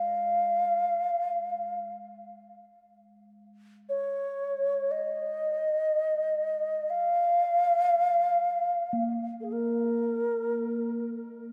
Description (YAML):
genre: world meditative, free-time meditation music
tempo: free time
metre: none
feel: none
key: Bb minor pentatonic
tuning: A4 = 440 Hz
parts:
  - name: mellow xiao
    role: melody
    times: 0.0-11.2 s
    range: Ab4 to F5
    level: -29 LUFS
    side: equal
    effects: diffuse ambient delay
  - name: bronze singing bowl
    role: texture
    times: 0.0-11.5 s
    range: Ab3 to Bb3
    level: -37 LUFS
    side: equal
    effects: none
room: wet church reverb, RT60 2.7 s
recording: none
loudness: -28 LUFS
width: mono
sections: 0.0-11.5 A section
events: none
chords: none